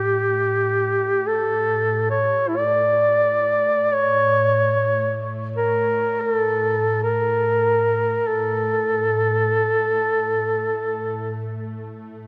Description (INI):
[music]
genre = caucasian folk, Caucasian lament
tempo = free time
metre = none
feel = none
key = unclear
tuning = A4 = 440 Hz
[part]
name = warm duduk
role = melody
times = 0.0-11.6 s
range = E4 to D5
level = -21 LUFS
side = equal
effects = none
[part]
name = ethereal airy pad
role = drone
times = 0.0-12.3 s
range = A2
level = -31 LUFS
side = equal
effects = ensemble chorus, built-in reverb
[sound]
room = moderate cathedral reverb, RT60 5.0 s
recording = dark, warm production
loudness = -21 LUFS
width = mono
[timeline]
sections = 0.0-12.3 A section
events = none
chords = none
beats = free time